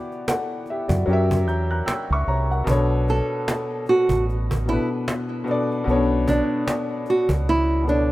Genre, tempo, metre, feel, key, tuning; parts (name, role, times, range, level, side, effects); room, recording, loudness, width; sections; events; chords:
lo-fi hip hop; 75 BPM; 4/4; swing 57% on 16ths; B minor; A4 = 440 Hz
warm upright piano; accompaniment; 0.0-8.1 s; B2 to G6; -24 LUFS; left 2 dB
cajon; drums; 0.1-8.0 s; -27 LUFS; right 1 dB
deep dub fingered electric bass; bass; 0.9-8.1 s; A1 to F#2; -22 LUFS; equal
nylon-string guitar; melody; 3.1-8.1 s; D4 to A4; -22 LUFS; right 2 dB
light reverb, small room reverb; rough home demo mix; -19 LUFS; side -17 dB against mid
0.0-2.7 A section; 2.7-8.1 B section
0.0 Em9; 1.1 F#7b9; 2.7 Bm9